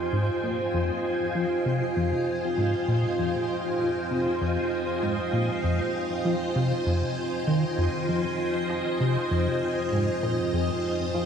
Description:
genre	ambient, sequencer-driven space music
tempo	98 BPM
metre	4/4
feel	straight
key	F minor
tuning	A4 = 439 Hz
part	string machine, full ensemble	sustained chords	0.0-11.3 s	F4 to Ab5	-26 LUFS	equal	ensemble chorus
part	analog drone	bass	0.4-11.3 s	F2	-42 LUFS	equal	none
part	plucky analog bass	riff	0.1-11.2 s	F2 to F3	-28 LUFS	equal	lush chorus, tape echo
room	wet cathedral reverb, RT60 5.8 s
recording	in a vast, echoing space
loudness	-24 LUFS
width	side -7 dB against mid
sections	0.0-11.3 A section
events	none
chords	0.0 Fm7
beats	0.13 | 0.74 1.35 1.96 2.58 | 3.19 3.80 4.41 5.02 | 5.64 6.25 6.86 7.47 | 8.09 8.70 9.31 9.92 | 10.53 11.15

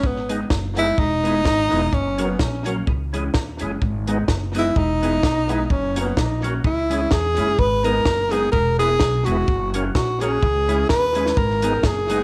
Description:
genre	ska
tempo	127 BPM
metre	4/4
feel	swing 56% on 8ths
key	G# minor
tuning	A4 = 442 Hz
part	breathy tenor saxophone	melody	0.0-12.2 s	B3 to B4	-23 LUFS	equal	none
part	upright bass	bass	0.0-12.2 s	E1 to E2	-27 LUFS	equal	none
part	compact cocktail drum kit	drums	0.0-12.2 s	hi-hat, kick drum, snare drum	-25 LUFS	equal	tape echo
part	mellow electric guitar	accompaniment	0.3-12.2 s	E3 to F#4	-31 LUFS	equal	subtle chorus
part	percussive tonewheel organ	stabs	0.3-12.2 s	B3 to A#4	-33 LUFS	equal	overdrive, chorus vibrato, slow rotary speaker
room	moderate plate reverb, RT60 1.0 s, studio reverb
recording	none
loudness	-20 LUFS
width	mono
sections	0.0-12.2 A section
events	tenor saxophone solo 0.0-12.2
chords	0.0 G#m; 1.0 E; 1.9 F#; 2.9 C#m; 3.8 G#m; 4.8 E; 5.7 F#; 6.6 C#m; 7.6 G#m; 8.5 E; 9.5 F#; 10.4 C#m; 11.4 G#m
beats	| 0.04 0.51 0.98 1.46 | 1.93 2.40 2.87 3.35 | 3.82 4.29 4.76 5.23 | 5.70 6.18 6.65 7.12 | 7.59 8.06 8.53 9.01 | 9.48 9.95 10.42 10.89 | 11.36 11.83

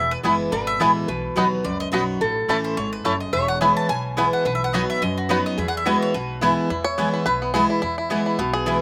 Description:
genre	bluegrass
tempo	214 BPM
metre	4/4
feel	swing 55% on 8ths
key	E major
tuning	A4 = 444 Hz
part	mandolin	melody	0.0-6.5 s	F#4 to A5	-29 LUFS	equal	none
part	lap resonator guitar	second line	0.0-6.7 s	E4 to C#5	-30 LUFS	equal	slapback echo
part	picked steel-string acoustic guitar	accompaniment	0.0-8.8 s	E2 to F#4	-26 LUFS	equal	slapback echo
part	upright bass	bass	0.0-8.8 s	E1 to F#2	-34 LUFS	equal	none
part	mandolin	stabs	0.2-8.8 s	A3 to B5	-24 LUFS	equal	none
part	bluegrass banjo	melody	0.3-8.8 s	A3 to C#5	-26 LUFS	equal	slapback echo
room	light reverb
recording	recorded outdoors, with no room sound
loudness	-22 LUFS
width	mono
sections	0.0-6.7 A section; 6.7-8.8 B section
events	five-string banjo solo 6.7-8.8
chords	0.0 E; 1.1 B; 2.2 A; 3.3 E; 4.5 B; 5.6 E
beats	0.24 0.53 0.81 | 1.09 1.37 1.65 1.93 | 2.21 2.49 2.77 3.05 | 3.33 3.62 3.90 4.18 | 4.46 4.74 5.02 5.30 | 5.58 5.86 6.14 6.42 | 6.70 6.98 7.26 7.54 | 7.83 8.11 8.39 8.67

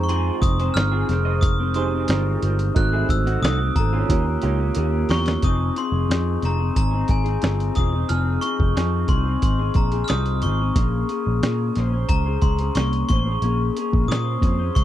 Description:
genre	indie pop, bedroom pop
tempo	90 BPM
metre	4/4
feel	straight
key	F minor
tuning	A4 = 440 Hz
part	glockenspiel with hard plastic mallets	melody	0.0-14.8 s	Ab5 to Gb6	-27 LUFS	equal	wide subtle chorus, slapback echo
part	electric guitar through a small old amp	accompaniment	0.0-14.8 s	F2 to C5	-27 LUFS	left 5 dB	analog chorus, warbly pitch drift
part	tine electric piano	accompaniment	0.0-5.4 s	Eb4 to G5	-29 LUFS	right 8 dB	none
part	vintage muted picked electric bass	bass	0.0-14.8 s	E1 to Bb2	-22 LUFS	equal	none
part	electric guitar through a small old amp	second line	0.1-5.3 s	Db4 to Eb5	-31 LUFS	right 7 dB	ensemble chorus, slapback echo
part	lo-fi sampler-style drum kit	drums	0.1-14.8 s	hi-hat, kick drum, snare drum	-22 LUFS	equal	none
room	little or no reverb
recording	dry, close 1970s-style studio recording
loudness	-18 LUFS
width	side -12 dB against mid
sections	0.0-5.4 A section; 5.4-14.8 B section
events	drum fill 4.1-5.4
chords	0.0 Fm7; 2.8 Ab7b9; 4.1 Eb7; 5.4 Fm7; 10.8 Bbm9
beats	| 0.09 0.76 1.43 2.09 | 2.76 3.43 4.09 4.76 | 5.43 6.09 6.76 7.43 | 8.10 8.76 9.43 10.10 | 10.76 11.43 12.10 12.76 | 13.43 14.10 14.76

